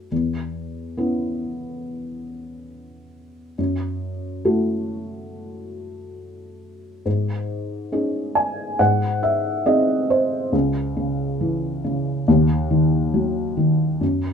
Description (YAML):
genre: folk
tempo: 69 BPM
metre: 4/4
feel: straight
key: C# minor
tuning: A4 = 440 Hz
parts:
  - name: felt-muted upright piano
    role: solo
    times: 0.0-14.3 s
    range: C#2 to G#5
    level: -20 LUFS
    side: equal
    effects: none
room: moderate studio ambience, RT60 0.5 s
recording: minimal, uncompressed stereo recording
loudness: -19 LUFS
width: side -6 dB against mid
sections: 0.0-10.5 A section; 10.5-14.3 B section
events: none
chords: 0.1 C#m7/E; 3.6 F#m7; 7.1 G#sus4; 8.8 G#; 10.5 C#m; 12.3 D#m